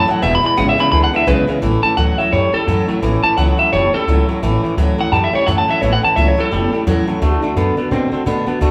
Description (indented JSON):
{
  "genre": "rock",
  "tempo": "172 BPM",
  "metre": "4/4",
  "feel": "swing 60% on 8ths",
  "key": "A major",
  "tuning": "A4 = 443 Hz",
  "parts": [
    { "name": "electric guitar through a small old amp", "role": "melody", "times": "0.0-7.4 s", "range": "A4 to B5", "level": "-18 LUFS", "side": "equal", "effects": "none" },
    { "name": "picked steel-string acoustic guitar", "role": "accompaniment", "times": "0.0-8.7 s", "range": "E2 to F#4", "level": "-25 LUFS", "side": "equal", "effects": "none" },
    { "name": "twangy electric guitar", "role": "riff", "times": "0.0-8.7 s", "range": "E2 to C4", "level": "-22 LUFS", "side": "equal", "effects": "none" },
    { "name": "upright bass", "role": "bass", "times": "0.0-8.7 s", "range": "E1 to B2", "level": "-21 LUFS", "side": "equal", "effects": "none" },
    { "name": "honky-tonk upright piano", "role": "accompaniment", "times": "0.1-1.6 s", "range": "B4 to A5", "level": "-30 LUFS", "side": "equal", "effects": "none" }
  ],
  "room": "moderate large studio reverb, RT60 1.2 s",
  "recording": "band playing live in one room",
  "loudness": "-15 LUFS",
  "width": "mono",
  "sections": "0.0-1.6 A section; 1.6-8.7 B section",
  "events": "clean electric guitar solo 0.0-1.6",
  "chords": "0.2 E; 1.6 A; 7.2 D",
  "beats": "| 0.23 0.58 0.93 1.27 | 1.62 1.97 2.32 2.67 | 3.02 3.37 3.72 4.07 | 4.42 4.77 5.12 5.47 | 5.82 6.17 6.52 6.87 | 7.22 7.57 7.91 8.26 | 8.61"
}